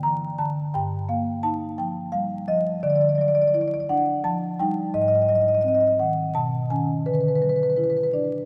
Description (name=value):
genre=classical, contemporary piece for solo marimba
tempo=85 BPM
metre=3/4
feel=rubato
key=unclear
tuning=A4 = 442 Hz
part: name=marimba with soft mallets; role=solo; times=0.0-8.5 s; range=G2 to Bb5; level=-23 LUFS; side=equal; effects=none
room=wet church reverb, RT60 3.5 s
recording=vinyl crackle, faint mains hum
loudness=-23 LUFS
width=mono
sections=0.0-8.5 A section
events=none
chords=0.0 Gm6; 0.7 F9sus4/G; 2.8 Dadd9; 4.2 F9; 4.9 G#7; 6.3 B9; 7.1 D69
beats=0.03 | 0.74 1.43 2.13 | 2.83 3.54 4.24 | 4.94 5.64 6.35 | 7.06 7.77